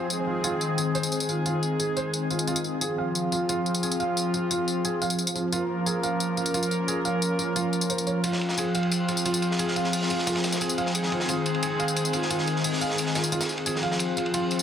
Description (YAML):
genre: dark technical drum and bass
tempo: 177 BPM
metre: 4/4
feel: straight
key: F minor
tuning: A4 = 441 Hz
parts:
  - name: sweeping resonant pad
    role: sustained chords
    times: 0.0-14.6 s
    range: Eb3 to Bb4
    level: -28 LUFS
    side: equal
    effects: chorus
  - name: warm brass ensemble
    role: stabs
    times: 0.0-14.6 s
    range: F3 to Bb4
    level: -31 LUFS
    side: left 2 dB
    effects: digital delay
  - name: tambourine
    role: drums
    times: 0.1-14.6 s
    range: none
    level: -30 LUFS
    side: left 1 dB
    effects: none
  - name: felt-muted upright piano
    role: arpeggios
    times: 0.3-14.4 s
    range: F4 to F5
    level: -31 LUFS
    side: right 4 dB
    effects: low-pass filter, digital delay
  - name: crunchy breakbeat drum kit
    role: drums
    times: 8.2-14.6 s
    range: hi-hat, ride cymbal, snare drum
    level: -31 LUFS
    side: equal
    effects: high-pass filter on cymbals, high-pass filter on hats, high-pass filter on snare, high-pass filter on room
room: moderate lush hall reverb, RT60 1.9 s, studio reverb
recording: dense, heavily limited modern master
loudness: -24 LUFS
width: side -8 dB against mid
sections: 0.0-14.6 A section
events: none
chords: 0.1 Ab; 2.8 Fm; 5.5 Bbm; 8.2 Fm; 10.9 Ab; 13.7 Fm